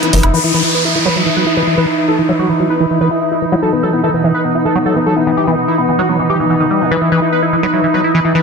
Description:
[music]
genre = trance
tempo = 146 BPM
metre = 4/4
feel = straight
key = unclear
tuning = A4 = 440 Hz
[part]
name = wide unison lead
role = melody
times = 0.0-8.4 s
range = B3 to B4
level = -17 LUFS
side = equal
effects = phaser, dub echo
[part]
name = evolving wavetable pad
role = sustained chords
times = 0.0-8.4 s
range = D#4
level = -18 LUFS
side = left 1 dB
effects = chorus, built-in reverb
[part]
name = liquid acid bass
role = riff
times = 0.0-8.4 s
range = D#3 to E4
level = -17 LUFS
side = moving between left 4 dB and right 5 dB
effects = chorus, auto-pan, dub echo
[part]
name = airy breathy pad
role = texture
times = 0.0-8.4 s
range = E3 to B5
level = -19 LUFS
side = right 2 dB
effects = chorus
[part]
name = downlifter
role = sound effects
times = 0.3-3.6 s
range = none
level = -18 LUFS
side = equal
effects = none
[sound]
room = moderate digital room reverb, RT60 1.0 s, digital ambience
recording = dense, heavily limited modern master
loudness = -11 LUFS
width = side -5 dB against mid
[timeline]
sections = 0.3-8.4 A section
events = filter sweep on acid bass 0.3-8.4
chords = 0.3 E5

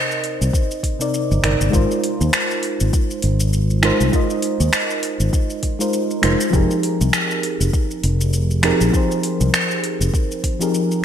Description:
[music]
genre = sunset chillout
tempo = 100 BPM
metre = 4/4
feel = swing 57% on 16ths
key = unclear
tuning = A4 = 439 Hz
[part]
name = mellow FM electric piano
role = accompaniment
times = 0.0-11.0 s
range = C3 to Eb5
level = -20 LUFS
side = equal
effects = chorus, auto-pan, ping-pong delay
[part]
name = deep house drum kit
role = drums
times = 0.1-11.0 s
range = finger snaps, hi-hat, shaker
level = -22 LUFS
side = equal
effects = studio reverb, gated reverb
[part]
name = fretless electric bass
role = bass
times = 0.4-10.1 s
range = F1 to Eb2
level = -18 LUFS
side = equal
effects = wide subtle chorus
[part]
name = electronic kick drum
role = drums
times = 0.5-10.6 s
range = none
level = -19 LUFS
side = equal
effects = studio reverb
[sound]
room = moderate lush hall reverb, RT60 2.2 s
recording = bright 1980s-style digital production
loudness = -16 LUFS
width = side -9 dB against mid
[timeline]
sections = 0.0-11.0 A section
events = none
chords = 0.0 Cm9; 1.7 Ab69; 6.5 Fm11

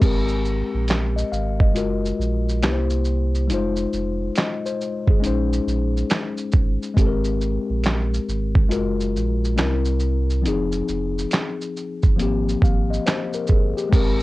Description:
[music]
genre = lo-fi hip hop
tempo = 69 BPM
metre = 4/4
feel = swing 65% on 16ths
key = Ab major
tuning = A4 = 442 Hz
[part]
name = mellow tine electric piano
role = accompaniment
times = 0.0-14.2 s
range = F3 to F5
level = -24 LUFS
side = left 4 dB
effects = medium stereo tremolo, cassette tape, low-pass filter
[part]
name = warm sub bass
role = bass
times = 0.0-14.2 s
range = F1 to C2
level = -23 LUFS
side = right 1 dB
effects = tube saturation
[part]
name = lo-fi sampler-style drum kit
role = drums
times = 0.0-14.2 s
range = crash cymbal, handclaps, hi-hat, kick drum, shaker, snare drum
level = -20 LUFS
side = right 1 dB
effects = none
[sound]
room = little or no reverb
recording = home recording on cassette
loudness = -19 LUFS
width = side -18 dB against mid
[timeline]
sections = 0.0-13.9 A section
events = none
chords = 0.0 Abmaj9; 1.8 Gbmaj9; 2.6 C7; 3.5 Fm7; 5.2 Bbm11; 7.0 Abmaj9; 8.7 Gbmaj9; 9.6 C7; 10.4 Fm7; 12.2 Abmaj13

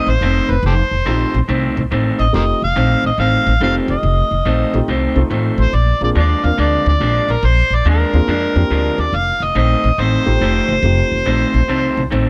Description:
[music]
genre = electric blues shuffle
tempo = 141 BPM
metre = 4/4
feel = swing 66% on 8ths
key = F mixolydian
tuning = A4 = 441 Hz
[part]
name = overdriven harmonica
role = melody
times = 0.0-12.1 s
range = G4 to F5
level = -21 LUFS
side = equal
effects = none
[part]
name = electric guitar through a small old amp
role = riff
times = 0.0-12.3 s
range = F2 to D4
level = -22 LUFS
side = equal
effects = none
[part]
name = upright bass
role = bass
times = 0.1-12.3 s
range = F1 to F2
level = -19 LUFS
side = equal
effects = none
[part]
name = dark upright piano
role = accompaniment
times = 1.1-12.0 s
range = A3 to Bb4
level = -26 LUFS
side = equal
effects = none
[sound]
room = small room ambience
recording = none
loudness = -16 LUFS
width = mono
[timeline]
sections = 0.0-12.3 A section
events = none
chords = 0.0 F7; 5.7 Bb7; 9.1 F7

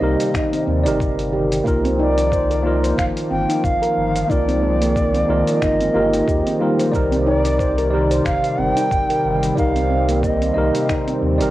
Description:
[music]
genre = organic downtempo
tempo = 91 BPM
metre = 4/4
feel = swing 56% on 16ths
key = C minor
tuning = A4 = 440 Hz
[part]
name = breathy bright low ney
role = melody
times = 0.0-11.2 s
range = D5 to G5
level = -22 LUFS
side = right 1 dB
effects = cassette tape, tape echo, plate reverb
[part]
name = mellow tine electric piano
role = accompaniment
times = 0.0-11.5 s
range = Bb3 to Eb5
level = -22 LUFS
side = right 1 dB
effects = medium stereo tremolo, sidechain pumping, cassette tape, tape echo, plate reverb
[part]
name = warm analog pad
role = sustained chords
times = 0.0-11.5 s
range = C3 to D5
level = -25 LUFS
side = equal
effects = chorus, sidechain pumping, cassette tape, plate reverb
[part]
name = warm sub bass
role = bass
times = 0.0-11.5 s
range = G1 to Eb2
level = -23 LUFS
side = equal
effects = tube saturation, sidechain pumping
[part]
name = dusty soul sampler-style drum kit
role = drums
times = 0.2-11.5 s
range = cabasa, finger snaps, hi-hat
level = -32 LUFS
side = equal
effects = studio reverb, cassette tape
[part]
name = handpan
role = arpeggios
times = 0.3-11.5 s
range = G3 to C5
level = -23 LUFS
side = equal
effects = cassette tape, tape echo, plate reverb
[part]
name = electronic kick drum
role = drums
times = 0.3-11.0 s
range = none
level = -24 LUFS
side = equal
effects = studio reverb, cassette tape
[sound]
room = moderate studio ambience, RT60 0.5 s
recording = home recording on cassette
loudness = -16 LUFS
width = side -15 dB against mid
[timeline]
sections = 0.0-11.5 A section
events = none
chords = 0.0 Cm7; 1.7 Bbsus4; 6.9 Cm7

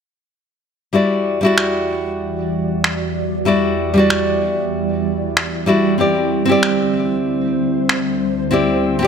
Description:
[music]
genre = sunset chillout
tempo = 95 BPM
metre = 4/4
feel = swing 57% on 16ths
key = E minor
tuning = A4 = 443 Hz
[part]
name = nylon-string guitar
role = accompaniment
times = 0.9-9.1 s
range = G3 to D5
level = -17 LUFS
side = left 1 dB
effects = auto-pan, ping-pong delay
[part]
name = ethereal airy pad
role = sustained chords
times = 1.5-9.1 s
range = D2 to F#5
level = -21 LUFS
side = right 2 dB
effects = ensemble chorus, built-in reverb, phaser
[part]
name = electronic finger snaps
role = drums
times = 1.6-8.0 s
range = none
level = -19 LUFS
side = equal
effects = none
[sound]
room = moderate lush hall reverb, RT60 1.6 s, small room ambience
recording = none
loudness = -15 LUFS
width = side -6 dB against mid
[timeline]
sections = 0.9-9.1 A section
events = none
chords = 0.9 Em9; 6.0 D9sus4

